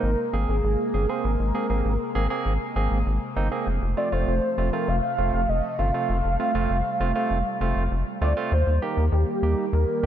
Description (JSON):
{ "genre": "pop", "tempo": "99 BPM", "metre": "4/4", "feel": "straight", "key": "unclear", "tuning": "A4 = 441 Hz", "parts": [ { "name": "warm velvety synth lead", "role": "melody", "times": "0.0-10.1 s", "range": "G4 to F5", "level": "-27 LUFS", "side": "equal", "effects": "chorus, tape echo" }, { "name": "barky tine electric piano", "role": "accompaniment", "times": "0.0-10.1 s", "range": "A3 to Ab4", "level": "-29 LUFS", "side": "right 4 dB", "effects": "none" }, { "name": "phased analog pad", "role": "sustained chords", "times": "0.0-10.1 s", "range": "C3 to Bb3", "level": "-31 LUFS", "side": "right 1 dB", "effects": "phaser, chorus" }, { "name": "rubbery square bass", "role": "bass", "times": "0.0-10.1 s", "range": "F1 to Eb2", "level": "-24 LUFS", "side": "equal", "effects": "none" } ], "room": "moderate lush hall reverb, RT60 2.2 s", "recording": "dark, warm production", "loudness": "-22 LUFS", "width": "side -10 dB against mid", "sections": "0.0-8.5 A section; 8.5-10.1 B section", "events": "none", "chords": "0.0 Abadd9; 3.7 F; 8.5 Eb" }